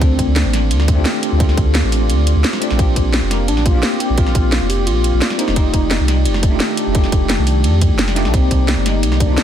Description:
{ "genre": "liquid drum and bass", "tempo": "173 BPM", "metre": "4/4", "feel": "straight", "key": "unclear", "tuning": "A4 = 440 Hz", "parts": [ { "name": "warm velvety synth lead", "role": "melody", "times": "0.0-1.0, 3.3-9.4 s", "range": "A3 to G4", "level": "-24 LUFS", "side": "left 1 dB", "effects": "chorus, ping-pong delay" }, { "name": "bell-like tine electric piano", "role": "accompaniment", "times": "0.0-9.4 s", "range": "A3 to D5", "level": "-21 LUFS", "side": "left 1 dB", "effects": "fast stereo tremolo, ping-pong delay" }, { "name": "glassy FM pad", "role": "sustained chords", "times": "0.0-9.4 s", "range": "Eb3 to D5", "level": "-25 LUFS", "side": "left 1 dB", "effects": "ensemble chorus, built-in reverb, sidechain pumping" }, { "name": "sub bass with octave", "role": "bass", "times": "0.0-9.4 s", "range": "F1 to F2", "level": "-16 LUFS", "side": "equal", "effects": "none" }, { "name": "electronic kick drum", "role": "drums", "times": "0.0-9.3 s", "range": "none", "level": "-16 LUFS", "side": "equal", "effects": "overdrive" }, { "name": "garage drum kit", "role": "drums", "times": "0.0-9.4 s", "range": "hi-hat, ride cymbal, snare drum", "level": "-21 LUFS", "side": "equal", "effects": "none" } ], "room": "little or no reverb", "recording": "dense, heavily limited modern master", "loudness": "-13 LUFS", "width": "side -10 dB against mid", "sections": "0.0-9.4 A section", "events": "none", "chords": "0.0 Dm7; 2.8 Bb69; 5.6 F13; 8.3 Cm9", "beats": "| 0.01 0.36 0.71 1.05 | 1.40 1.75 2.10 2.44 | 2.79 3.14 3.48 3.83 | 4.18 4.52 4.87 5.22 | 5.56 5.91 6.26 6.60 | 6.95 7.30 7.64 7.99 | 8.34 8.69 9.03 9.38" }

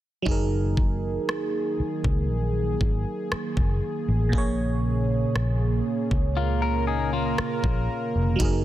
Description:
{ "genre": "contemporary R&B", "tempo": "59 BPM", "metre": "4/4", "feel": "straight", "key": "F# major", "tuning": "A4 = 440 Hz", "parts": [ { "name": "FM electric piano", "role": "accompaniment", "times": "0.2-8.6 s", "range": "A#2 to C#5", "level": "-29 LUFS", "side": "right 2 dB", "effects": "chorus, phaser" }, { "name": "warm analog pad", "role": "sustained chords", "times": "0.3-8.6 s", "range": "C#3 to A#4", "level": "-30 LUFS", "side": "right 1 dB", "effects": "chorus" }, { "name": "vintage muted fingered electric bass", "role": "bass", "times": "0.3-8.6 s", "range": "E#1 to C#2", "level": "-26 LUFS", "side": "equal", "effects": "none" }, { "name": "smooth R&B drum kit", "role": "drums", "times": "0.3-8.6 s", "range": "hi-hat, kick drum, rim click", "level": "-26 LUFS", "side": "equal", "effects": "soft clipping on snare" }, { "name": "clean electric guitar", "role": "arpeggios", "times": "6.4-8.4 s", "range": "A#3 to A#4", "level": "-29 LUFS", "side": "left 7 dB", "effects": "digital delay" } ], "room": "little or no reverb", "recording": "dense, heavily limited modern master", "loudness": "-22 LUFS", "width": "side -13 dB against mid", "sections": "0.3-8.6 A section", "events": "none", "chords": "0.3 F#69; 4.3 A#m7", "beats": "| 0.26 1.28 2.30 3.31 | 4.33 5.35 6.37 7.38 | 8.40" }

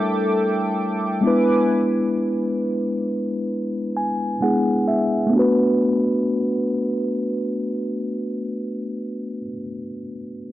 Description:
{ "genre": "R&B", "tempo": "66 BPM", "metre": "4/4", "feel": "swing 54% on 16ths", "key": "B minor", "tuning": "A4 = 440 Hz", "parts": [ { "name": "mellow tine electric piano", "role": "accompaniment", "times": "0.0-10.5 s", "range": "G3 to G#5", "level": "-20 LUFS", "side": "equal", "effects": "slow stereo tremolo, low-pass filter" }, { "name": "chorused pulse-width pad", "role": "sustained chords", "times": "0.0-1.7 s", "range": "A4 to D6", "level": "-24 LUFS", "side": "equal", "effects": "low-pass filter" } ], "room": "light reverb, digital ambience", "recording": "dry, gritty hardware recording", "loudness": "-19 LUFS", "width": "side -14 dB against mid", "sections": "0.0-5.3 A section; 5.3-9.0 B section", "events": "filter sweep 0.0-5.3; tine electric piano fill 3.5-5.3", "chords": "0.0 A7sus4; 1.2 E7; 5.3 Bm7", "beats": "0.78 | 1.69 2.59 3.50 4.41 | 5.32 6.23 7.14 8.05" }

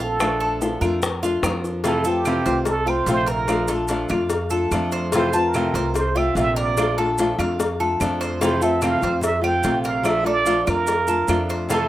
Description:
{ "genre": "latin, Cuban son and guajira", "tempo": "146 BPM", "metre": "4/4", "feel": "straight", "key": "unclear", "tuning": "A4 = 440 Hz", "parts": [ { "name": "trumpet with plunger mute", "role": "melody", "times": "0.0-11.9 s", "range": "G4 to G5", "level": "-22 LUFS", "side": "right 4 dB", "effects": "none" }, { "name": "nylon-string guitar", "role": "accompaniment", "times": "0.0-11.9 s", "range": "C3 to F4", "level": "-23 LUFS", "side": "left 2 dB", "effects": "none" }, { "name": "Cuban tres", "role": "arpeggios", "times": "0.0-11.9 s", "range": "F4 to A5", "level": "-29 LUFS", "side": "equal", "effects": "none" }, { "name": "upright bass", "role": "bass", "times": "0.0-11.9 s", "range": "Bb1 to F2", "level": "-27 LUFS", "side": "right 1 dB", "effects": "none" }, { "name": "maracas", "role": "percussion", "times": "0.0-11.9 s", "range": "none", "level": "-35 LUFS", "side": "right 3 dB", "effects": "none" }, { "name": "bongos and cowbell", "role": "percussion", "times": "0.2-11.9 s", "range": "none", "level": "-28 LUFS", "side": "left 4 dB", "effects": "none" }, { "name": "claves", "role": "percussion", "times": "0.2-11.5 s", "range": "none", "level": "-33 LUFS", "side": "right 4 dB", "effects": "none" } ], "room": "light reverb", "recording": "rough home demo mix", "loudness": "-18 LUFS", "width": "side -14 dB against mid", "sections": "0.0-1.8 A section; 1.8-11.9 B section", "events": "muted trumpet solo 0.0-1.8", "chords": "0.2 Bbmaj7; 1.8 Fmaj7; 3.5 Bbmaj7; 5.1 Fmaj7; 6.8 Bbmaj7; 8.4 Fmaj7; 10.1 Bbmaj7", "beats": "| 0.20 0.61 1.02 1.43 | 1.84 2.25 2.66 3.07 | 3.48 3.90 4.31 4.72 | 5.13 5.54 5.95 6.36 | 6.77 7.18 7.59 8.01 | 8.42 8.83 9.24 9.65 | 10.06 10.47 10.88 11.29 | 11.70" }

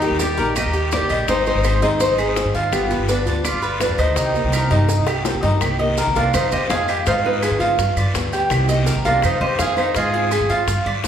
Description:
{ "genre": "latin, Cuban son and guajira", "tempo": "166 BPM", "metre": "4/4", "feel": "straight", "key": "C minor", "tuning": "A4 = 440 Hz", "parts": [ { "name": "nylon-string guitar", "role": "melody", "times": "0.0-11.1 s", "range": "G4 to F5", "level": "-24 LUFS", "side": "left 2 dB", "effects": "none" }, { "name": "bright trumpet", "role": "second line", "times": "0.0-10.7 s", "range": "B3 to Ab4", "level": "-27 LUFS", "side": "right 1 dB", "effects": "none" }, { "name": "picked old ladder-braced acoustic guitar", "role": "accompaniment", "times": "0.0-11.1 s", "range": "C3 to Ab4", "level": "-28 LUFS", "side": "left 2 dB", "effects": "none" }, { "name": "Cuban tres", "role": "arpeggios", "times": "0.0-11.1 s", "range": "Eb4 to F5", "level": "-21 LUFS", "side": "right 1 dB", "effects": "none" }, { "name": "upright bass", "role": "bass", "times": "0.0-11.1 s", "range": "G1 to Eb3", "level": "-22 LUFS", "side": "equal", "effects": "none" }, { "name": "bongos", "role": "percussion", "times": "0.0-11.1 s", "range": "none", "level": "-30 LUFS", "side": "left 4 dB", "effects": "none" }, { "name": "maracas", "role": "percussion", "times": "0.0-11.1 s", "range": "none", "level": "-32 LUFS", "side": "right 5 dB", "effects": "none" }, { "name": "guiro", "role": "percussion", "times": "0.2-11.1 s", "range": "none", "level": "-32 LUFS", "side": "left 4 dB", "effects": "none" }, { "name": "claves", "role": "percussion", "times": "0.6-11.0 s", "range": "none", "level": "-32 LUFS", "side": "right 2 dB", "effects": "none" } ], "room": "wet large studio reverb, RT60 1.3 s", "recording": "band playing live in one room", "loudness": "-16 LUFS", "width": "side -9 dB against mid", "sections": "0.0-5.6 A section; 5.6-11.1 B section", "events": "drum fill 4.9-5.6", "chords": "0.0 Eb; 1.3 Ab; 2.7 G7; 4.2 Cm7; 6.3 Fm7; 7.1 Ab6; 7.8 G7; 8.5 Cm7; 9.2 Fm7; 10.0 Ab6", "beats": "0.20 0.56 0.92 | 1.28 1.64 2.00 2.37 | 2.73 3.09 3.45 3.81 | 4.17 4.54 4.90 5.26 | 5.62 5.98 6.34 6.70 | 7.06 7.42 7.79 8.15 | 8.51 8.87 9.23 9.59 | 9.96 10.32 10.68 11.04" }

